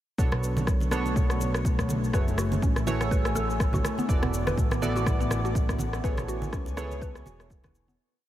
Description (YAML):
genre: afro house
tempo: 123 BPM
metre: 4/4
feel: swing 57% on 16ths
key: B dorian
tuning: A4 = 440 Hz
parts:
  - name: dark analog pad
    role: sustained chords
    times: 0.6-8.0 s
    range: A3 to E6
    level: -36 LUFS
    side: left 3 dB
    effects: chorus, phaser, sidechain pumping
  - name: warm analog keys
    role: stabs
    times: 0.2-8.0 s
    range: A3 to D5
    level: -33 LUFS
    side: right 3 dB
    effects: chorus, sidechain pumping, analog delay
  - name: smooth gliding synth bass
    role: bass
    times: 0.2-8.0 s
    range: E1 to C#2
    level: -30 LUFS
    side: equal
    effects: sidechain pumping
  - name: electronic cabasa and rim click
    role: drums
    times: 0.2-8.0 s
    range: none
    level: -35 LUFS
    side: left 1 dB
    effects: none
  - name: electronic kick drum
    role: drums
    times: 0.2-7.7 s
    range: none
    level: -27 LUFS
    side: equal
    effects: none
  - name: congas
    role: percussion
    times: 0.3-8.0 s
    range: none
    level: -35 LUFS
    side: right 2 dB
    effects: none
  - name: mallet-like synth pluck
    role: arpeggios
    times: 2.1-8.0 s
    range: B3 to B4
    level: -35 LUFS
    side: equal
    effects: chorus, phaser, sidechain pumping, analog delay
room: light reverb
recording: none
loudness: -24 LUFS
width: side -13 dB against mid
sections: 0.2-8.0 groove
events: fade-out 5.4-8.0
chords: 0.2 Bm9; 2.1 F#m9; 4.1 E9sus4; 6.0 Amaj9